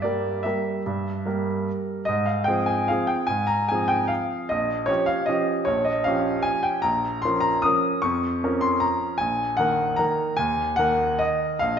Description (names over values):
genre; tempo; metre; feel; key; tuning
classical, piano waltz; 151 BPM; 3/4; uneven beats, rubato; unclear; A4 = 437 Hz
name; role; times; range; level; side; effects
clear baby grand piano; solo; 0.0-11.8 s; Bb1 to Eb6; -21 LUFS; equal; none
room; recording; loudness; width
wet recital hall reverb, RT60 1.3 s; nothing above 7.5 kHz; -21 LUFS; side -8 dB against mid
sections
0.0-11.8 A section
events
none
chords
0.0 Edim/G; 2.1 Fm/Ab; 4.5 Gm7b5/Bb; 6.9 Bbm; 9.2 Ebm/Bb